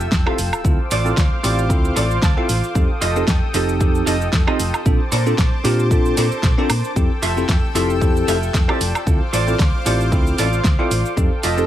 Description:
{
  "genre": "nu-disco, nu disco",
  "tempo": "114 BPM",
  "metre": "4/4",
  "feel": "swing 55% on 16ths",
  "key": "unclear",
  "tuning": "A4 = 440 Hz",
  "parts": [
    { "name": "lush unison pad", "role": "sustained chords", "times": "0.0-11.7 s", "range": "A4 to E6", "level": "-27 LUFS", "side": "equal", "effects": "chorus, sidechain pumping" },
    { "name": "clean electric guitar", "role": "riff", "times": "0.0-11.7 s", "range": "D4 to A5", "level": "-25 LUFS", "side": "right 2 dB", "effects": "lush chorus, tape echo" },
    { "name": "hollow-body short-scale fingered electric bass", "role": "bass", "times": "0.0-11.6 s", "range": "F1 to Bb2", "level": "-21 LUFS", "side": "equal", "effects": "none" },
    { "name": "pop drum kit", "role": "drums", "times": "0.0-11.7 s", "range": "hi-hat, shaker, snare drum, woodblock", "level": "-24 LUFS", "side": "right 1 dB", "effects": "none" },
    { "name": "sub drop", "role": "sound effects", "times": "0.0-0.6 s", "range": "none", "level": "-40 LUFS", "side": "equal", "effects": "none" },
    { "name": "electronic kick drum", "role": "drums", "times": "0.1-11.3 s", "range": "none", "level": "-18 LUFS", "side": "equal", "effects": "none" },
    { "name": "bell-like tine electric piano", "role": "accompaniment", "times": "0.3-11.6 s", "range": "C4 to A4", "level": "-23 LUFS", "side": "equal", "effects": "phaser, sidechain pumping, tape echo" }
  ],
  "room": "little or no reverb",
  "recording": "faint mains hum",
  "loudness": "-15 LUFS",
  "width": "side -12 dB against mid",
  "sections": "0.0-11.7 A section",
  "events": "impact 0.0-0.6; clean electric guitar fill 2.0-2.8",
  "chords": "0.0 Fmaj9; 0.6 Dm7; 2.8 F9; 4.9 Bbmaj9; 7.0 Fmaj9; 9.1 Dm7"
}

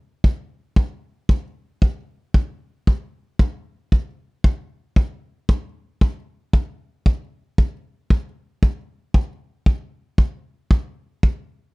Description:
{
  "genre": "blues",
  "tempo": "115 BPM",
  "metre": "4/4",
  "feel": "swing 64% on 8ths",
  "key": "none",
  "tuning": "none",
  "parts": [
    { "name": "kick drum", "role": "drums", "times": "0.2-11.4 s", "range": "none", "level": "-15 LUFS", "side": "equal", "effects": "none" }
  ],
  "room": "little or no reverb",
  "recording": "dry, close 1970s-style studio recording",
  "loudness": "-20 LUFS",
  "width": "side -27 dB against mid",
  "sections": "0.8-11.7 A section",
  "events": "none",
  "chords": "none"
}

